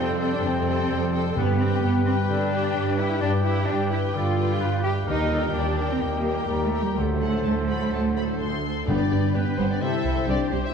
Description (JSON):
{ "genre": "cinematic", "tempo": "128 BPM", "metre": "4/4", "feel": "straight", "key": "unclear", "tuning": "A4 = 440 Hz", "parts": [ { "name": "warm symphonic violin section", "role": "melody", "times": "0.0-10.7 s", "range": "B4 to C6", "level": "-37 LUFS", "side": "left 5 dB", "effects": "none" }, { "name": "concert flute", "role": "second line", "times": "0.0-10.7 s", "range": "B4 to Bb5", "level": "-35 LUFS", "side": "left 6 dB", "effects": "none" }, { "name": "mellow clarinet", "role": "second line", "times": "0.0-10.7 s", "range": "G4 to C5", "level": "-37 LUFS", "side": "left 3 dB", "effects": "none" }, { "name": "warm cor anglais", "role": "second line", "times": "0.0-10.7 s", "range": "G4 to G5", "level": "-35 LUFS", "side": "right 2 dB", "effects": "none" }, { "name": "warm symphonic violin section", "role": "second line", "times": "0.0-10.7 s", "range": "B3 to C5", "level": "-38 LUFS", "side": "left 3 dB", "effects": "none" }, { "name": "rich symphonic viola section", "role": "accompaniment", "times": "0.0-10.7 s", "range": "G4 to A4", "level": "-34 LUFS", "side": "left 1 dB", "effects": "none" }, { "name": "bright trombone section", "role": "sustained chords", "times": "0.0-10.0 s", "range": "G2 to C4", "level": "-34 LUFS", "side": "right 2 dB", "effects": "none" }, { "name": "dark French horn section", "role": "sustained chords", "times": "0.0-10.7 s", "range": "B3 to C5", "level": "-32 LUFS", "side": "left 6 dB", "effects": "none" }, { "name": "concert harp", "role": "arpeggios", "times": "0.0-10.7 s", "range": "F2 to C5", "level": "-32 LUFS", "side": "left 8 dB", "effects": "none" }, { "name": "clear symphonic double bass section", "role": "bass", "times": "0.0-10.6 s", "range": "G1 to G2", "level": "-27 LUFS", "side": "right 3 dB", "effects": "none" }, { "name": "warm symphonic cello section", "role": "bass", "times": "0.0-10.6 s", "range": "C2 to G4", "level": "-28 LUFS", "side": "right 2 dB", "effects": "none" }, { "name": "timpani", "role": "percussion", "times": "1.4-2.0, 8.9-9.5 s", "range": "G2", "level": "-28 LUFS", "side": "right 2 dB", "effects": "none" } ], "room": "wet scoring stage reverb, RT60 1.7 s", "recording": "dark, warm production", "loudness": "-21 LUFS", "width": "side -6 dB against mid", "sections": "0.0-8.9 A section; 8.9-10.7 B section", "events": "none", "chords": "0.0 Fadd9; 1.4 G; 5.1 Eb; 7.0 D7; 8.9 G; 9.8 C" }